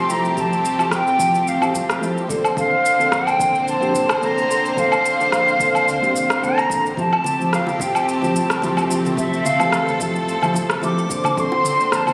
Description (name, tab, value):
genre	sunset chillout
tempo	109 BPM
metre	4/4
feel	swing 54% on 16ths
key	F major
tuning	A4 = 440 Hz
part	silver concert flute	melody	0.0-12.1 s	E5 to D6	-22 LUFS	equal	delay
part	nylon-string guitar	accompaniment	0.0-12.1 s	D3 to A4	-26 LUFS	equal	delay
part	rich symphonic string section	sustained chords	0.0-12.1 s	D3 to C5	-26 LUFS	equal	vintage 12-bit sampler grit
part	round analog bass	bass	0.0-12.1 s	F1 to D2	-37 LUFS	equal	none
part	electronic shaker, woodblock and rim click	drums	0.1-12.1 s	none	-26 LUFS	equal	studio reverb
part	electronic kick drum	drums	0.4-11.5 s	none	-34 LUFS	equal	studio reverb
part	congas and bongos	percussion	7.2-12.1 s	none	-33 LUFS	equal	none
room	moderate plate reverb, RT60 2.3 s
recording	recorded on a phone in the room, club reverb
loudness	-19 LUFS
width	mono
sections	0.0-12.1 A section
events	none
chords	0.0 Fmaj9; 2.3 Bbmaj9; 7.0 Fmaj9; 11.1 Bbmaj9